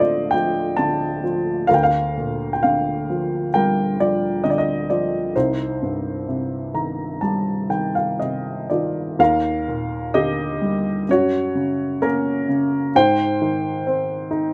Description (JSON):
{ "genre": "classical, lyrical solo piano", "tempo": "64 BPM", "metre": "4/4", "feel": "uneven beats, rubato", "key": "C dorian", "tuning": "A4 = 443 Hz", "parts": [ { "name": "warm upright piano", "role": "solo", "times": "0.0-14.5 s", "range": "C2 to Bb5", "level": "-21 LUFS", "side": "equal", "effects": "none" } ], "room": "moderate small room reverb, RT60 0.6 s", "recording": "none", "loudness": "-21 LUFS", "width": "mono", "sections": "0.0-9.2 A section; 9.2-14.5 B section", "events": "upright piano fill 6.3-9.2", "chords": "0.0 Dm7; 1.7 Bb6/D; 5.3 Cm; 9.2 Ebmaj7; 11.1 Gb; 12.9 Abmaj7" }